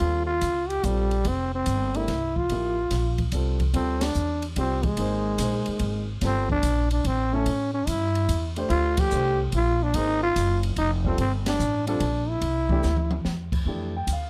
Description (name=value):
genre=jazz, small-group swing and bop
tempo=145 BPM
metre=3/4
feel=swing 67% on 8ths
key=F major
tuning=A4 = 439 Hz
part: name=growling trombone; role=melody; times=0.0-13.3 s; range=G3 to G4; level=-28 LUFS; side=equal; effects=none
part: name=warm upright piano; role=accompaniment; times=0.0-14.3 s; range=E3 to G5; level=-35 LUFS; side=equal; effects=none
part: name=upright bass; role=bass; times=0.0-14.3 s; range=F1 to A2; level=-29 LUFS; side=equal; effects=none
part: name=open jazz drum kit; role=drums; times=0.0-14.2 s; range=crash cymbal, hi-hat, kick drum, ride cymbal, snare drum, toms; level=-34 LUFS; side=equal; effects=none
room=light reverb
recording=close, detailed microphones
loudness=-25 LUFS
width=mono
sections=0.0-3.7 A section; 3.7-13.7 B section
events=band accent 4.0, 8.9, 11.4; drum fill 12.8-13.3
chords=0.0 Eb9; 1.3 Fadd9; 3.7 Dm11; 5.0 Ab; 6.2 Gm9; 7.5 A5; 8.7 D5; 9.9 Ab9; 11.2 Gmadd9; 12.4 C; 13.7 Fmaj9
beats=| 0.01 0.43 0.84 | 1.26 1.67 2.09 | 2.50 2.92 3.33 | 3.74 4.16 4.57 | 4.99 5.40 5.81 | 6.23 6.64 7.05 | 7.47 7.88 8.29 | 8.71 9.12 9.54 | 9.95 10.36 10.78 | 11.19 11.60 12.01 | 12.43 12.84 13.25 | 13.67 14.08